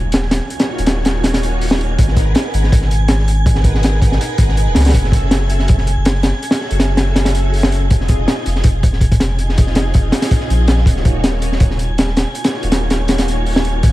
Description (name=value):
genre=drum and bass, jungle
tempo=162 BPM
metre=4/4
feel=straight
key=Eb minor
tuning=A4 = 440 Hz
part: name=saturated sub bass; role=bass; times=0.0-13.9 s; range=Eb1 to Db2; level=-16 LUFS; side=equal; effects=none
part: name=impact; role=sound effects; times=0.0-0.5 s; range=none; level=-38 LUFS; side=equal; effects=none
part: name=wind-like tuned noise texture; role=texture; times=0.0-13.9 s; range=Ab5 to Ab6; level=-28 LUFS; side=right 4 dB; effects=built-in reverb
part: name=crunchy breakbeat drum kit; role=drums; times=0.1-13.9 s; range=hi-hat, kick drum, snare drum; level=-15 LUFS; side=equal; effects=none
part: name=soft string machine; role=sustained chords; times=0.5-13.9 s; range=Bb3 to Gb5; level=-24 LUFS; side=equal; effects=ensemble chorus, vintage 12-bit sampler grit
room=studio ambience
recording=vinyl crackle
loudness=-12 LUFS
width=side -16 dB against mid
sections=0.0-13.9 A section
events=impact 0.0-0.5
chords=0.0 Ebm9; 2.0 Abm9; 4.9 Gbm9; 7.9 Fm9; 10.9 Ebm9